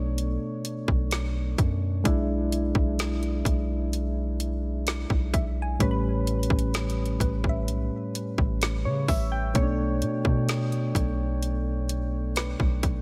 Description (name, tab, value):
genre	contemporary R&B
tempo	64 BPM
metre	4/4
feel	straight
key	B minor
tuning	A4 = 440 Hz
part	soft electric-piano-like synth keys	accompaniment	0.0-13.0 s	A2 to G5	-32 LUFS	equal	chorus
part	long sustained 808-style bass	bass	0.0-13.0 s	A1 to C#3	-31 LUFS	equal	none
part	trap drum kit	drums	0.2-13.0 s	hi-hat, kick drum, snare drum	-29 LUFS	equal	none
part	mallet-like synth pluck	texture	5.3-13.0 s	B4 to B5	-42 LUFS	equal	chorus, tape echo
room	little or no reverb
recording	none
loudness	-27 LUFS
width	mono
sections	0.0-13.0 A section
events	none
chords	0.0 Bm9; 2.1 E7/B; 5.8 A9; 9.6 Bm9